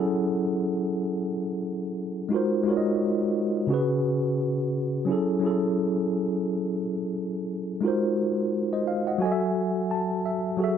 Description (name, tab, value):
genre	hip hop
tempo	87 BPM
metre	4/4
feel	swing 57% on 16ths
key	F# minor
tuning	A4 = 442 Hz
part	mellow tine electric piano	solo	0.0-10.8 s	C#3 to A5	-24 LUFS	equal	fast stereo tremolo
room	wet studio reverb, RT60 0.6 s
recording	dark, warm production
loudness	-24 LUFS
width	side -8 dB against mid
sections	0.0-10.6 A section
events	tine electric piano fill 9.6-10.6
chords	0.0 F#m7; 2.3 G#13; 3.7 C#7sus4; 5.1 F#m7; 7.8 G#13; 9.2 F#m9